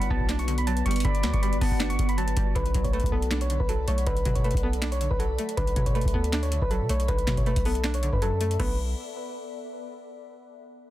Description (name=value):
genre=hip hop, trap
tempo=159 BPM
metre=4/4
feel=half-time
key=B minor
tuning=A4 = 441 Hz
part: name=soft electric-piano-like synth keys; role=melody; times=0.0-8.8 s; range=A4 to C#6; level=-32 LUFS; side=right 1 dB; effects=chorus, low-pass filter, digital delay
part: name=silver concert flute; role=second line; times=0.0-2.1 s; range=D5 to F#5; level=-39 LUFS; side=left 1 dB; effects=digital delay
part: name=string-like resonator pluck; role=accompaniment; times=0.0-8.8 s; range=D3 to D4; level=-34 LUFS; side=right 2 dB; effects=chorus, low-pass filter
part: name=glassy FM pad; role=sustained chords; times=0.0-8.8 s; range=B3 to B5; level=-36 LUFS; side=equal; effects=ensemble chorus, built-in reverb
part: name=long sustained 808-style bass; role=bass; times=0.0-8.9 s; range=G1 to B2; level=-27 LUFS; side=equal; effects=none
part: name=booming analog drum machine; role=drums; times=0.0-8.8 s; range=crash cymbal, handclaps, hi-hat, kick drum, snare drum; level=-28 LUFS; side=equal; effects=none
room=digital ambience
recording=dense, heavily limited modern master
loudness=-23 LUFS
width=side -14 dB against mid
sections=0.0-2.6 A section; 2.6-8.6 B section; 8.6-10.1 C section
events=none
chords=0.0 Gmaj7; 2.6 Bm7